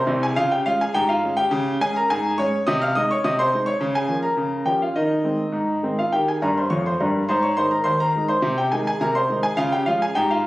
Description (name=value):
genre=ragtime piano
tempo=104 BPM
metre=2/4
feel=straight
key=Ab major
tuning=A4 = 439 Hz
part: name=clear grand piano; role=solo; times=0.0-10.5 s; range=C2 to F6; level=-19 LUFS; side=equal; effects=none
room=light reverb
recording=recorded on a phone in the room, studio reverb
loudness=-19 LUFS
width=side -17 dB against mid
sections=0.0-10.5 A section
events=grand piano fill 6.4-7.3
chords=0.4 Db; 2.7 Ab/C; 3.8 Bbm/Db; 5.0 Ab/Eb; 6.1 Eb; 7.3 Ab; 8.4 Ab/C; 9.6 Db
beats=| 0.36 0.93 | 1.50 2.08 | 2.65 3.23 | 3.80 4.38 | 4.96 5.54 | 6.12 6.70 | 7.27 7.85 | 8.43 9.01 | 9.58 10.16